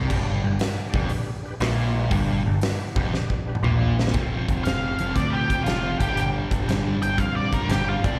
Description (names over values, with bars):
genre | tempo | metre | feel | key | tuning
blues rock power trio and southern rock | 118 BPM | 4/4 | swing 68% on 8ths | G mixolydian | A4 = 440 Hz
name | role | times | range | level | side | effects
overdriven tonewheel organ | sustained chords | 0.0-8.2 s | B3 to D5 | -40 LUFS | equal | none
overdriven electric guitar | riff | 0.0-8.2 s | F2 to G3 | -30 LUFS | equal | tremolo, slapback echo
growling picked electric bass | bass | 0.0-8.2 s | F1 to F2 | -28 LUFS | equal | overdrive
huge arena drum kit | drums | 0.1-8.1 s | crash cymbal, hi-hat, kick drum, snare drum, toms | -28 LUFS | equal | none
octave-fuzz lead guitar | melody | 4.6-8.2 s | D4 to G5 | -29 LUFS | equal | distortion, slapback echo
room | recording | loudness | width
light reverb | live gig heard through the venue's PA, recital hall reverb | -24 LUFS | mono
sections
0.0-4.1 A section; 4.1-8.2 B section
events
drum fill 3.1-4.1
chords
0.0 G; 4.1 F; 5.9 G